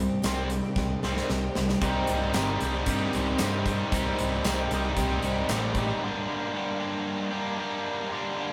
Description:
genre	classic rock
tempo	114 BPM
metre	4/4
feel	straight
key	unclear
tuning	A4 = 442 Hz
part	picked twelve-string acoustic guitar	accompaniment	0.0-6.0 s	C3 to G4	-39 LUFS	equal	none
part	distorted electric guitar	riff	0.0-8.5 s	G2 to G4	-31 LUFS	equal	overdrive
part	fingered electric bass	bass	0.0-5.9 s	G1 to G2	-33 LUFS	equal	none
part	huge arena drum kit	drums	0.2-5.9 s	hi-hat, kick drum, snare drum, tambourine	-34 LUFS	equal	none
part	distorted electric guitar	riff	1.8-6.0 s	C3 to G4	-35 LUFS	equal	distortion
room	moderate stone room reverb, RT60 1.3 s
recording	band playing live in one room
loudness	-28 LUFS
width	mono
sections	0.0-1.8 A section; 1.8-6.0 B section; 6.0-8.5 C section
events	drum fill 0.8-1.8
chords	0.0 Cm; 6.0 Gm

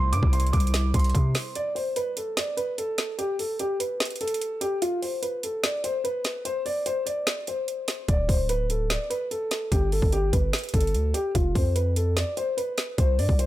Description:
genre	hip hop, trap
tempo	147 BPM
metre	4/4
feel	half-time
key	unclear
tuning	A4 = 441 Hz
part	dark concert grand piano	melody	0.0-13.5 s	F4 to D6	-28 LUFS	equal	low-pass filter
part	hollow soft pad	sustained chords	0.0-1.5 s	C3 to C5	-35 LUFS	left 2 dB	chorus
part	long sustained 808-style bass	bass	0.0-1.3, 8.1-13.5 s	D1 to C3	-24 LUFS	equal	none
part	trap drum kit	drums	0.1-13.5 s	hi-hat, kick drum, snare drum	-26 LUFS	equal	none
room	little or no reverb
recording	none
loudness	-23 LUFS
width	side -15 dB against mid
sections	0.0-1.6 A section; 1.6-13.5 B section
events	break 1.6-8.1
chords	0.0 C; 1.6 N.C.; 8.1 D5; 9.7 G; 11.3 F5

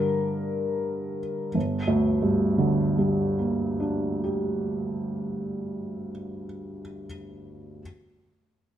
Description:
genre	neoclassical minimalist piano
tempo	89 BPM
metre	3/4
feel	rubato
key	G minor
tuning	A4 = 441 Hz
part	felt-muted upright piano	solo	0.0-7.8 s	G1 to Bb4	-25 LUFS	right 1 dB	none
room	moderate recital hall reverb, RT60 1.3 s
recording	minimal, uncompressed stereo recording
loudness	-24 LUFS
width	side -10 dB against mid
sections	0.0-1.5 A section; 1.5-5.6 B section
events	slowing down 0.0-1.5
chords	0.0 Gm

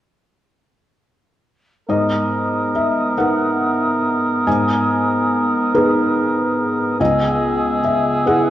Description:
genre	cinematic, emotional film score for orchestra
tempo	47 BPM (dotted quarters)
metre	6/8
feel	rubato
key	G# minor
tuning	A4 = 440 Hz
part	mellow hollow silver concert flute	second line	1.9-8.5 s	D#6 to E6	-24 LUFS	left 1 dB	none
part	mellow oboe	second line	1.9-8.5 s	G#4 to A#4	-22 LUFS	right 4 dB	none
part	warm clarinet	second line	1.9-8.5 s	B3	-22 LUFS	left 1 dB	none
part	felt-muted upright piano	accompaniment	1.9-8.5 s	C#2 to G#5	-18 LUFS	left 1 dB	none
room	moderate recital hall reverb, RT60 1.5 s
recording	worn, warbling old tape, cassette tape, warbly pitch drift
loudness	-15 LUFS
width	side -12 dB against mid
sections	1.9-8.5 A section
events	none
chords	1.9 G#madd9; 7.0 C#m7

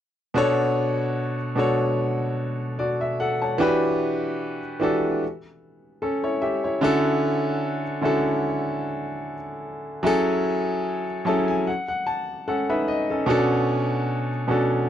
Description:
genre	soul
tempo	74 BPM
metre	4/4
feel	swing 54% on 16ths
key	B minor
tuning	A4 = 438 Hz
part	bright grand piano	solo	0.3-14.9 s	B2 to A5	-21 LUFS	equal	none
room	light reverb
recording	dry, close 1970s-style studio recording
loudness	-21 LUFS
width	side -10 dB against mid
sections	0.4-13.3 A section; 13.3-14.9 B section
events	grand piano fill 10.9-13.3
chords	0.4 Bm9; 3.6 Em7; 5.2 N.C.; 6.8 Dmaj9; 10.1 F#m7; 11.7 N.C.; 13.3 Bm9

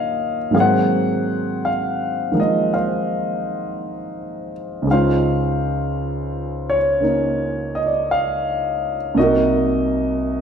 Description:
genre	jazz ballad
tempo	56 BPM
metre	4/4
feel	swing 68% on 8ths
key	unclear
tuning	A4 = 441 Hz
part	warm concert grand piano	solo	0.0-10.4 s	C2 to Gb5	-18 LUFS	equal	none
room	wet recital hall reverb, RT60 1.4 s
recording	recorded in a church or concert hall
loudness	-17 LUFS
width	side -7 dB against mid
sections	0.0-10.4 A section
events	none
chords	0.0 Ebm7; 0.5 Ab13; 4.9 Dbmaj9; 9.2 Cm7b5

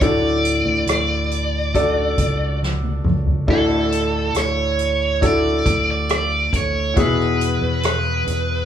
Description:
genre	pop ballad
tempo	69 BPM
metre	4/4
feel	straight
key	unclear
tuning	A4 = 440 Hz
part	high-gain lead guitar	melody	0.0-8.7 s	A4 to D5	-22 LUFS	right 2 dB	distortion
part	clear grand piano	accompaniment	0.0-8.7 s	A2 to D5	-21 LUFS	left 2 dB	none
part	fingered electric bass	bass	0.0-8.7 s	C#2 to E2	-23 LUFS	equal	none
part	soft-mallet drum kit	drums	0.0-8.5 s	crash cymbal, hi-hat, kick drum, rim click, snare drum, toms	-22 LUFS	equal	none
room	light reverb, small room reverb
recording	small room ambience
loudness	-17 LUFS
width	side -9 dB against mid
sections	0.0-3.5 A section; 3.5-8.7 B section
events	drum fill 2.6-3.5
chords	0.0 D; 3.5 Dadd9; 7.0 Eadd9

